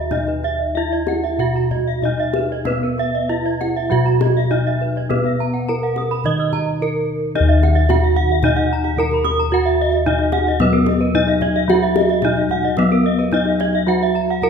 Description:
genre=Balinese gamelan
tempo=94-111 BPM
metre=4/4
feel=straight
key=Eb pelog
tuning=A4 = 437 Hz
part: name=gamelan-type bronze metallophone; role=melody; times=0.0-14.5 s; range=Cb4 to Eb5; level=-20 LUFS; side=right 2 dB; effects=none
part: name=gamelan-type bronze metallophone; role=arpeggios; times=0.0-14.4 s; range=Bb4 to Eb6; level=-24 LUFS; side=right 6 dB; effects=none
part: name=gamelan-type bossed gongs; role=bass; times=0.0-14.5 s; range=Eb2 to Cb5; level=-20 LUFS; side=left 2 dB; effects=none
part: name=gamelan-type bronze metallophone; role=arpeggios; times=0.1-14.5 s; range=Bb4 to Fb6+35c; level=-24 LUFS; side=left 5 dB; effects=none
part: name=kendang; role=percussion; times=0.1-14.5 s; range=none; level=-25 LUFS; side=left 5 dB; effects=none
part: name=gamelan-type bronze metallophone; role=accompaniment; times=2.7-7.4, 11.7-14.5 s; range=Gb3 to Eb4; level=-29 LUFS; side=right 5 dB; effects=none
room=moderate recital hall reverb, RT60 1.4 s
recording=minimal, uncompressed stereo recording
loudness=-15 LUFS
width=side -6 dB against mid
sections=0.0-7.4 A section; 7.4-14.5 B section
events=none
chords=none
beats=| 0.11 0.75 1.39 2.03 | 2.67 3.30 3.91 4.52 | 5.11 5.69 6.26 6.81 | 7.36 7.90 8.44 8.98 | 9.52 10.06 10.61 11.15 | 11.69 12.23 12.78 13.33 | 13.88 14.44

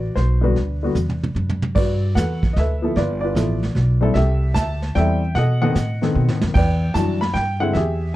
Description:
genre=jazz piano trio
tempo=150 BPM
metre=3/4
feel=swing 67% on 8ths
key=G major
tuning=A4 = 437 Hz
part: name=warm baby grand piano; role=melody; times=0.0-8.2 s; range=D3 to B5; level=-22 LUFS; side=left 1 dB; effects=none
part: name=upright bass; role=bass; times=0.0-8.1 s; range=G1 to B2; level=-20 LUFS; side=equal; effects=none
part: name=vintage brush drum kit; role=drums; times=0.2-8.2 s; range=brushed snare drum, crash cymbal, hi-hat, kick drum, snare drum, toms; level=-23 LUFS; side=right 1 dB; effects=none
room=light reverb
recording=dark, warm production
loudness=-17 LUFS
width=side -16 dB against mid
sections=0.0-1.8 A section; 1.8-8.2 B section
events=drum fill 1.0-1.8, 6.2-6.6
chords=0.0 Gmaj7 (rootless); 1.8 Gmaj9; 3.0 G13; 4.2 C6; 5.4 B7b9; 6.6 Em9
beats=0.16 | 0.56 0.96 1.36 | 1.76 2.16 2.56 | 2.96 3.36 3.76 | 4.16 4.56 4.96 | 5.36 5.75 6.15 | 6.55 6.95 7.35 | 7.75 8.15

